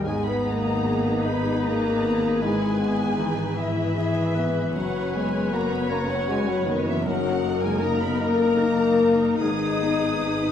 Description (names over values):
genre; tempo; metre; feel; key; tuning
cinematic, emotional film score for orchestra; 52 BPM (dotted quarters); 6/8; rubato; G# minor; A4 = 439 Hz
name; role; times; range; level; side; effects
warm symphonic violin section; second line; 0.0-10.5 s; D#5 to D#6; -33 LUFS; left 2 dB; none
warm concert grand piano; accompaniment; 0.0-10.5 s; F#2 to E5; -30 LUFS; right 1 dB; none
warm symphonic viola section; accompaniment; 0.0-10.5 s; E3 to B4; -32 LUFS; right 2 dB; none
mellow French horn section; sustained chords; 0.0-10.5 s; D#3 to D#4; -24 LUFS; left 3 dB; none
rich symphonic double bass section; bass; 0.0-10.5 s; F#1 to G#1; -32 LUFS; right 2 dB; none
warm symphonic cello section; bass; 0.0-10.5 s; F#2 to G#2; -34 LUFS; right 2 dB; none
rich symphonic violin section; melody; 0.1-10.5 s; A#4 to C#5; -37 LUFS; left 3 dB; none
clear clarinet; second line; 0.1-10.5 s; B3 to C#5; -32 LUFS; left 1 dB; none
room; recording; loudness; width
wet scoring stage reverb, RT60 1.6 s; minimal, uncompressed stereo recording, vinyl crackle; -21 LUFS; side -9 dB against mid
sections
0.1-10.5 A section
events
none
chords
0.1 G#m; 2.4 E/G#; 4.7 F#sus4; 7.1 D#m/F#; 9.4 G#m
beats
| 0.05 1.24 | 2.41 3.57 | 4.75 5.91 | 7.06 8.21 | 9.39